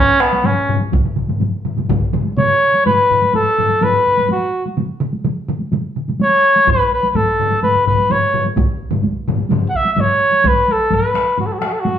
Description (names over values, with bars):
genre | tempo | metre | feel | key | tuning
japanese traditional, taiko drum ensemble | 126 BPM | 4/4 | straight | B suspended pentatonic | A4 = 439 Hz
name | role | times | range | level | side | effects
clear flugelhorn | melody | 0.0-12.0 s | B3 to F#5 | -13 LUFS | equal | none
taiko ensemble | percussion | 0.2-12.0 s | none | -21 LUFS | left 3 dB | none
taiko ensemble | percussion | 0.3-12.0 s | none | -22 LUFS | right 1 dB | none
taiko ensemble | percussion | 0.9-10.1 s | none | -22 LUFS | right 2 dB | none
taiko ensemble | percussion | 0.9-2.0, 6.7-11.0 s | none | -21 LUFS | right 1 dB | none
room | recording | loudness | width
wet large studio reverb, RT60 0.9 s | band playing live in one room | -13 LUFS | side -9 dB against mid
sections
0.0-2.9 A section; 2.9-10.5 B section; 10.5-12.0 C section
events
speeding up 0.0-12.0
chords
none